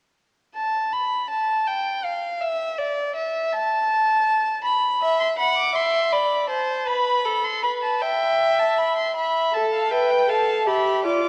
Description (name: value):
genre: classical, baroque-style fugue for string quartet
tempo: 53 BPM (dotted quarters)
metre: 6/8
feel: straight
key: A minor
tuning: A4 = 438 Hz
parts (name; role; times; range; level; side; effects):
- warm violin; melody; 0.6-11.3 s; D5 to D6; -25 LUFS; equal; none
- rich violin; second line; 5.0-11.3 s; A4 to G5; -25 LUFS; equal; none
- clear viola; accompaniment; 9.5-11.3 s; F4 to B4; -23 LUFS; equal; none
room: wet concert hall reverb, RT60 2.0 s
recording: worn, warbling old tape, cassette tape, warbly pitch drift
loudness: -22 LUFS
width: mono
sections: 0.2-9.2 A section; 9.2-11.3 B section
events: none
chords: 0.2 N.C.; 4.6 E5; 5.8 Cmaj13; 6.9 Asus2; 8.0 Em; 9.2 A5; 10.3 Bm7b5